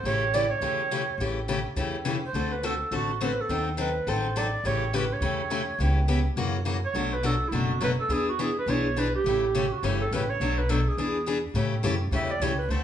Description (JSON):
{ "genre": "acoustic string swing (jazz manouche)", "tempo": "209 BPM", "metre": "4/4", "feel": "swing 57% on 8ths", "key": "A mixolydian", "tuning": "A4 = 439 Hz", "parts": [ { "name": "breathy clarinet", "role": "melody", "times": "0.0-12.8 s", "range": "E4 to E5", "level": "-28 LUFS", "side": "right 3 dB", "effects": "none" }, { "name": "upright bass", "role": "bass", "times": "0.0-12.8 s", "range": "F#1 to A2", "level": "-29 LUFS", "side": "equal", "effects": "none" }, { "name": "picked steel-string acoustic guitar", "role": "accompaniment", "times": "0.1-12.8 s", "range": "B2 to A4", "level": "-28 LUFS", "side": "left 3 dB", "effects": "none" } ], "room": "wet large studio reverb, RT60 0.8 s", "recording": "band playing live in one room, nothing above 11.0 kHz", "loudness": "-24 LUFS", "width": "side -10 dB against mid", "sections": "0.0-11.5 A section; 11.5-12.8 B section", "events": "clarinet solo 11.5-12.8", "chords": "0.0 A7; 2.3 D7; 3.5 D#dim7; 4.6 A7; 5.8 C#m7b5; 6.4 F#7; 6.9 Bm7; 8.1 E7; 9.2 A7; 10.4 Bm7; 11.0 E7; 11.5 A7", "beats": "| 0.04 0.33 0.62 0.90 | 1.19 1.48 1.77 2.05 | 2.34 2.63 2.92 3.21 | 3.49 3.78 4.07 4.36 | 4.64 4.93 5.22 5.51 | 5.79 6.08 6.37 6.66 | 6.95 7.23 7.52 7.81 | 8.10 8.38 8.67 8.96 | 9.25 9.54 9.82 10.11 | 10.40 10.69 10.97 11.26 | 11.55 11.84 12.12 12.41 | 12.70" }